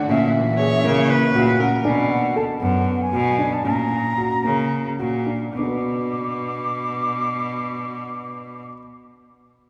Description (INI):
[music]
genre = contemporary instrumental, chamber music in an uneven meter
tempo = 208-239 BPM (eighths)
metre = 7/8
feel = straight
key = B dorian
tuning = A4 = 440 Hz
[part]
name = mellow jazz flute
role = melody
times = 0.0-8.7 s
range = E5 to D6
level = -28 LUFS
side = equal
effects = none
[part]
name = rich symphonic string section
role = sustained chords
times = 0.0-1.8 s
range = A#2 to F#4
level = -30 LUFS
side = equal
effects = none
[part]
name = dark grand piano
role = arpeggios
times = 0.0-8.8 s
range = A#3 to B4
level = -26 LUFS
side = equal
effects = none
[part]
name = bright cello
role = bass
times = 0.1-8.6 s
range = F#2 to C#3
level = -26 LUFS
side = equal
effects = none
[part]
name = clear viola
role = second line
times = 0.6-1.9 s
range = A#4 to C#5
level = -27 LUFS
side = equal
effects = none
[sound]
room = wet church reverb, RT60 2.8 s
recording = recorded in a church or concert hall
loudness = -21 LUFS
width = mono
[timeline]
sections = 0.0-1.8 A section; 1.8-5.6 B section; 5.6-9.6 C section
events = slowing down 1.8-5.6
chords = 0.1 F#7/A#; 1.8 Bm7; 3.6 F#/A#; 5.6 Bm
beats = | 0.09 0.34 0.59 0.84 1.09 1.34 1.60 | 1.85 2.10 2.35 2.61 2.86 3.12 3.38 | 3.64 3.90 4.17 4.44 4.71 4.99 5.27 | 5.55 5.84 6.13 6.42 6.71 6.99 7.28 | 7.57 7.86 8.14 8.43 8.72